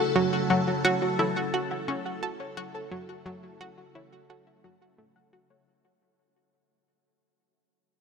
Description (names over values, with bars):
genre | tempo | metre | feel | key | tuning
ambient, sequencer-driven space music | 87 BPM | 4/4 | straight | F# minor | A4 = 440 Hz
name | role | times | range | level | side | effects
phased string machine | sustained chords | 0.0-5.7 s | C#3 to A4 | -31 LUFS | equal | ensemble chorus, phaser
soft round pluck | arpeggios | 0.0-5.7 s | F#4 to F#5 | -32 LUFS | left 1 dB | chorus, auto-pan, tape echo
analog pluck | riff | 0.2-5.5 s | F#3 to A4 | -27 LUFS | right 1 dB | chorus, tape echo
room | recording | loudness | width
wet huge ambient reverb, RT60 8.6 s | none | -25 LUFS | side -6 dB against mid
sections
0.0-5.7 A section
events
fade-out 0.0-5.7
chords
0.0 F#m7